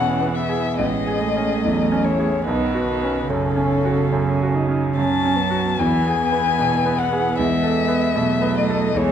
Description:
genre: classical, slow romantic movement for piano quartet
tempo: 69-77 BPM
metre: 4/4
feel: rubato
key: unclear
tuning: A4 = 440 Hz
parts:
  - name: dark violin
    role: melody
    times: 0.0-9.1 s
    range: A4 to A5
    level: -23 LUFS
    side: left 7 dB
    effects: none
  - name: rich cello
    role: second line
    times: 0.0-9.1 s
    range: C#3 to G#3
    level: -24 LUFS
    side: right 6 dB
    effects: none
  - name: bright concert grand piano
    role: accompaniment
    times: 0.0-9.1 s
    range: A1 to A4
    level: -22 LUFS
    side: equal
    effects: none
  - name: dark viola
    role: accompaniment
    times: 0.0-9.1 s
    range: G#3 to D#4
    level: -26 LUFS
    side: right 4 dB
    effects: none
room: moderate recital hall reverb, RT60 1.2 s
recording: dark, warm production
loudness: -17 LUFS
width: side -9 dB against mid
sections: 0.0-9.1 A section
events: none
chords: 0.0 E; 0.8 Amaj7; 2.5 B9; 5.8 E; 7.4 B5/E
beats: 0.78 1.62 | 2.45 3.29 4.13 4.97 | 5.79 6.59 7.39 8.18 | 8.96

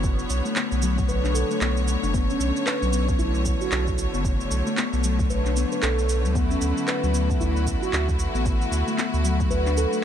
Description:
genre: organic downtempo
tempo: 114 BPM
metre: 4/4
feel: swing 60% on 16ths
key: B minor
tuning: A4 = 441 Hz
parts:
  - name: clear symphonic string section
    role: sustained chords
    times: 0.0-10.0 s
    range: D3 to C#5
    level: -30 LUFS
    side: left 1 dB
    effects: sidechain pumping
  - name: steel tongue drum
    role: arpeggios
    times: 0.0-10.0 s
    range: F#3 to B4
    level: -26 LUFS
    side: left 2 dB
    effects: tape echo
  - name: warm sub bass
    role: bass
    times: 0.0-9.9 s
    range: F#1 to D2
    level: -24 LUFS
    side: right 1 dB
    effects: sidechain pumping
  - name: electronic kick drum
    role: drums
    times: 0.0-9.5 s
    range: none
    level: -26 LUFS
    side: right 1 dB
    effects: small room ambience
  - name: electronic shaker and handclaps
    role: drums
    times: 0.0-10.0 s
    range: none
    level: -31 LUFS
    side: right 2 dB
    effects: small room ambience
room: small room ambience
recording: none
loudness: -21 LUFS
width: side -9 dB against mid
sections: 0.0-10.0 A section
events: none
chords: 0.0 Bmadd9; 6.3 D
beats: | 0.03 0.56 1.08 1.61 | 2.14 2.66 3.19 3.72 | 4.24 4.77 5.29 5.82 | 6.35 6.87 7.40 7.93 | 8.45 8.98 9.51 10.03

